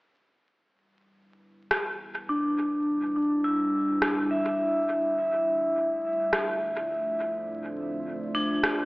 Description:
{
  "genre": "ambient dub",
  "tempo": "104 BPM",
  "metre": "4/4",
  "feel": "straight",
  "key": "unclear",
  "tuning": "A4 = 440 Hz",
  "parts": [
    { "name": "deep dark ambient pad", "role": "sustained chords", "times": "1.7-8.9 s", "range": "G3 to D5", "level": "-38 LUFS", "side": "equal", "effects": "chorus, built-in reverb" },
    { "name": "electronic rim click", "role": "drums", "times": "1.7-8.8 s", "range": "none", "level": "-28 LUFS", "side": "equal", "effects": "overdrive, dub echo" },
    { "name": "vibraphone with hard mallets", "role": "arpeggios", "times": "2.3-8.9 s", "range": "D4 to E5", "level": "-25 LUFS", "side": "equal", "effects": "low-pass filter, dub echo" }
  ],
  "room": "wet concert hall reverb, RT60 2.2 s",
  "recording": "vinyl crackle, AM radio sound",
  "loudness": "-25 LUFS",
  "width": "side -23 dB against mid",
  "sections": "0.6-8.9 A section",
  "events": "fade-in on ambient pad 0.6-8.9; filter sweep on vibraphone 0.6-8.9",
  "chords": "0.6 Em7; 5.2 Dm7",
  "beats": "| 0.56 1.14 1.71 2.29 | 2.87 3.44 4.02 4.60 | 5.17 5.75 6.33 6.91 | 7.48 8.06 8.64"
}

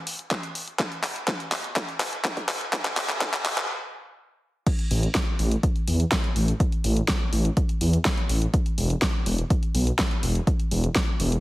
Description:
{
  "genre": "progressive house",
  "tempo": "124 BPM",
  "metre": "4/4",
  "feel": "straight",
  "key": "unclear",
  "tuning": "A4 = 440 Hz",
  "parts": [
    { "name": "deep house drum kit", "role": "drums", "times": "0.1-11.4 s", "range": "crash cymbal, handclaps, hi-hat, snare drum", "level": "-27 LUFS", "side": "equal", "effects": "none" },
    { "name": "electronic kick drum", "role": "drums", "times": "0.3-11.1 s", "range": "none", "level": "-25 LUFS", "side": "equal", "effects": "high-pass filter on kick" },
    { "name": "dark detuned saw bass", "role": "bass", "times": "4.9-11.4 s", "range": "E1 to E2", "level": "-22 LUFS", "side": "equal", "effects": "sidechain pumping" }
  ],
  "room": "light reverb, digital ambience",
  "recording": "heavily compressed radio sound, high-pass filter",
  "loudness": "-22 LUFS",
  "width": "side -17 dB against mid",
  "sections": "0.0-4.7 A section; 4.7-11.4 B section",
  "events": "build-up 0.0-4.7; drum fill 0.0-3.7; stop 3.7-4.7; drop 4.7-11.4",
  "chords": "none",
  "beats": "0.31 | 0.80 1.28 1.76 2.25 | 2.73 3.21 3.70 4.18 | 4.67 5.15 5.63 6.12 | 6.60 7.08 7.57 8.05 | 8.54 9.02 9.50 9.99 | 10.47 10.96"
}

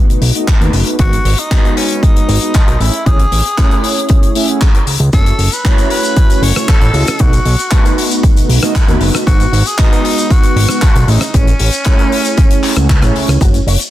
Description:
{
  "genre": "nu-disco, nu disco",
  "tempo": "116 BPM",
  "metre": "4/4",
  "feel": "straight",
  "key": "unclear",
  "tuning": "A4 = 439 Hz",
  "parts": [
    { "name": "mellow synth brass", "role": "accompaniment", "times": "0.0-13.6 s", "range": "G#3 to F#5", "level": "-18 LUFS", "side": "right 1 dB", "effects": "chorus, slapback echo" },
    { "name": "fat analog bass", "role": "bass", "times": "0.1-13.8 s", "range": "F#1 to D#2", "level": "-13 LUFS", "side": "equal", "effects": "none" },
    { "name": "damped 70s drum kit", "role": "drums", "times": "0.1-13.9 s", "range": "handclaps, hi-hat, rim click, shaker", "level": "-18 LUFS", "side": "left 2 dB", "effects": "none" },
    { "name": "electronic kick drum", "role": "drums", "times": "0.5-13.5 s", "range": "none", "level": "-10 LUFS", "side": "equal", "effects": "none" },
    { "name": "raspy tenor saxophone", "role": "melody", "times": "1.0-13.2 s", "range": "C#4 to C#5", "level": "-20 LUFS", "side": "left 1 dB", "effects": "tape echo" },
    { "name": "electric guitar with an envelope filter", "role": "riff", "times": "13.4-13.7 s", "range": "F#4 to C#5", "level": "-23 LUFS", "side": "equal", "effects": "ensemble chorus, slapback echo" }
  ],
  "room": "little or no reverb",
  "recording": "dense, heavily limited modern master",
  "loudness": "-9 LUFS",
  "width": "side -14 dB against mid",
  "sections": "0.0-13.9 A section",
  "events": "none",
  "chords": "0.0 B7; 1.0 G#m7; 2.8 Amaj7; 5.1 F#m7; 7.2 B7; 9.3 G#m7; 11.1 Amaj7",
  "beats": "0.48 | 1.00 1.51 2.03 2.55 | 3.06 3.58 4.10 4.62 | 5.13 5.65 6.17 6.69 | 7.20 7.72 8.24 8.76 | 9.27 9.79 10.31 10.82 | 11.34 11.86 12.38 12.89 | 13.41"
}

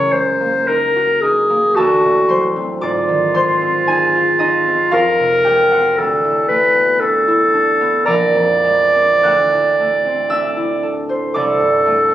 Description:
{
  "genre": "classical, impressionist duo for clarinet and harp",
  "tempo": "49-61 BPM",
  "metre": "3/4",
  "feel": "rubato",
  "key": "unclear",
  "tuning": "A4 = 441 Hz",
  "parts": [
    { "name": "clear clarinet", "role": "melody", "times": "0.0-12.1 s", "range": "F4 to D5", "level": "-13 LUFS", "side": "right 1 dB", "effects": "none" },
    { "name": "concert harp", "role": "accompaniment", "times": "0.0-12.1 s", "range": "Bb1 to F#6", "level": "-18 LUFS", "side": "equal", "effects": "none" }
  ],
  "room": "light reverb",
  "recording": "recorded on a phone in the room, club reverb, compression",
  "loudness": "-12 LUFS",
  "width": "side -12 dB against mid",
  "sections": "0.0-12.1 A section",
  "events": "none",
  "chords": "0.0 F#69; 1.8 D7; 2.8 Ab6; 4.9 Fm9; 6.0 D69; 8.1 Bb9; 9.2 D9; 11.3 C69",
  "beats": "0.67 1.75 | 2.81 3.87 4.92 | 5.97 7.00 8.06 | 9.23 10.30 11.34"
}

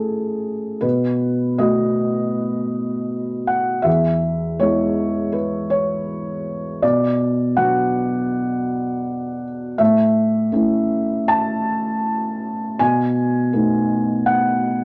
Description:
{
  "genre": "neoclassical minimalist piano",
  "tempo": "81 BPM",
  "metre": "4/4",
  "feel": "rubato",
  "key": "unclear",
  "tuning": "A4 = 441 Hz",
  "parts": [
    { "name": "felt-muted upright piano", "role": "solo", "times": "0.0-14.8 s", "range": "E2 to A5", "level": "-20 LUFS", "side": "equal", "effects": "none" }
  ],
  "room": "moderate club reverb, RT60 0.6 s",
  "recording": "none",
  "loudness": "-20 LUFS",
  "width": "mono",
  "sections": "0.0-14.8 A section",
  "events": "none",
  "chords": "0.0 A; 0.8 B7; 3.9 E; 6.8 Bm; 9.8 A; 12.8 B7",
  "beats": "0.07 | 0.83 1.59 2.35 3.10 | 3.86 4.60 5.34 6.08 | 6.82 7.56 8.31 9.05 | 9.79 10.54 11.31 12.06 | 12.79 13.53 14.26"
}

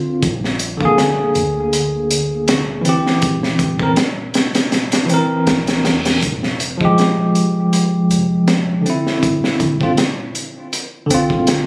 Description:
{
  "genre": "trip hop",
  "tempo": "80 BPM",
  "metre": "4/4",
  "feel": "swing 55% on 16ths",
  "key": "F harmonic minor",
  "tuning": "A4 = 440 Hz",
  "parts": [
    { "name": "bell-like tine electric piano", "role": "accompaniment", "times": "0.0-11.7 s", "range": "D3 to Bb4", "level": "-16 LUFS", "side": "equal", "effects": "tremolo, low-pass filter, tape echo" },
    { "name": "soft 808-style bass", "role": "bass", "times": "0.0-11.7 s", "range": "D1 to E2", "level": "-32 LUFS", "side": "equal", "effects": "tube saturation" },
    { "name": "crunchy breakbeat drum kit", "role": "drums", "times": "0.2-11.7 s", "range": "hi-hat, kick drum, snare drum", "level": "-18 LUFS", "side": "equal", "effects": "none" },
    { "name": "reverse cymbal", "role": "sound effects", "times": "5.3-6.2 s", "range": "none", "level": "-27 LUFS", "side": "equal", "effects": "none" }
  ],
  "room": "light reverb, studio reverb",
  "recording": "recorded on a phone in the room, compression",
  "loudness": "-14 LUFS",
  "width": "side -28 dB against mid",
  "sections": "0.0-11.7 A section",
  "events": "kick drops out 4.7-6.2; reverse cymbal 5.3-6.2",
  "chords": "0.2 Bb7; 3.2 C7; 6.2 Fmadd9; 9.2 Dm7",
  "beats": "| 0.22 0.97 1.72 2.47 | 3.22 3.97 4.72 5.47 | 6.22 6.97 7.72 8.47 | 9.22 9.97 10.72 11.47"
}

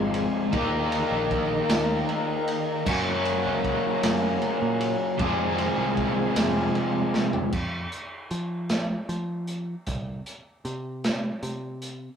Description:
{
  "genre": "psychedelic rock",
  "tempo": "51 BPM (dotted quarters)",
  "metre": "6/8",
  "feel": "straight",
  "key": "F minor",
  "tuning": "A4 = 437 Hz",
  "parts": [
    { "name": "dark studio string section", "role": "sustained chords", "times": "0.0-7.5 s", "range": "Ab4 to Bb5", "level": "-36 LUFS", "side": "right 1 dB", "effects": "none" },
    { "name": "biting overdriven guitar", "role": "riff", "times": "0.0-7.5 s", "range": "F2 to Ab4", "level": "-24 LUFS", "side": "left 1 dB", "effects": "harmonic tremolo" },
    { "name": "picked electric bass", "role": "bass", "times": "0.0-12.1 s", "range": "Ab1 to F3", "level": "-32 LUFS", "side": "right 1 dB", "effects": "none" },
    { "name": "crunchy breakbeat drum kit", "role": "drums", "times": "0.1-12.0 s", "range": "crash cymbal, hi-hat, kick drum, ride cymbal, snare drum, toms", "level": "-30 LUFS", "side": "right 1 dB", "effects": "none" }
  ],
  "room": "moderate studio ambience, RT60 0.5 s",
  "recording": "rough rehearsal-room recording, tube saturation",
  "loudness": "-24 LUFS",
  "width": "side -7 dB against mid",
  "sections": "0.0-7.5 A section; 7.5-12.2 B section",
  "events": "drum fill 7.1-7.5",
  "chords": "0.0 Fm; 0.5 Eb; 2.9 Gb; 5.2 Fm; 7.5 N.C.",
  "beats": "| 0.52 1.69 | 2.86 4.03 | 5.19 6.36 | 7.53 8.70 | 9.87 11.04"
}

